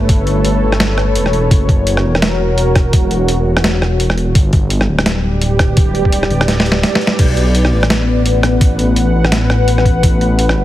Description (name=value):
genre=half-time drum and bass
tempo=169 BPM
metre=4/4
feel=swing 58% on 16ths, half-time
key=B minor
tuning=A4 = 442 Hz
part: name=dark analog pad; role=sustained chords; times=0.0-10.6 s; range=G3 to F#5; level=-18 LUFS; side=left 1 dB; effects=chorus, sidechain pumping
part: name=dark detuned saw bass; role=bass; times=0.0-10.6 s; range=D1 to B1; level=-14 LUFS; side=equal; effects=none
part: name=boom bap sampler-style drum kit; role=drums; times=0.1-10.6 s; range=crash cymbal, hi-hat, rim click, snare drum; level=-17 LUFS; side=equal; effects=none
part: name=electronic kick drum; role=drums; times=0.1-10.1 s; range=none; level=-12 LUFS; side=equal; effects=none
room=little or no reverb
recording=heavily compressed radio sound, multiband compression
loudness=-11 LUFS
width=side -14 dB against mid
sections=0.0-7.2 A section; 7.2-10.6 A section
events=drop 0.0-7.2, 7.2-10.6; drum fill 6.5-7.2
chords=0.0 Aadd9; 1.5 F#; 4.4 G; 7.2 Bm; 10.0 Asus2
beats=| 0.09 0.45 0.80 1.16 | 1.51 1.87 2.22 2.58 | 2.93 3.29 3.64 4.00 | 4.35 4.71 5.06 5.42 | 5.77 6.13 6.48 6.84 | 7.19 7.55 7.90 8.26 | 8.61 8.97 9.32 9.68 | 10.03 10.39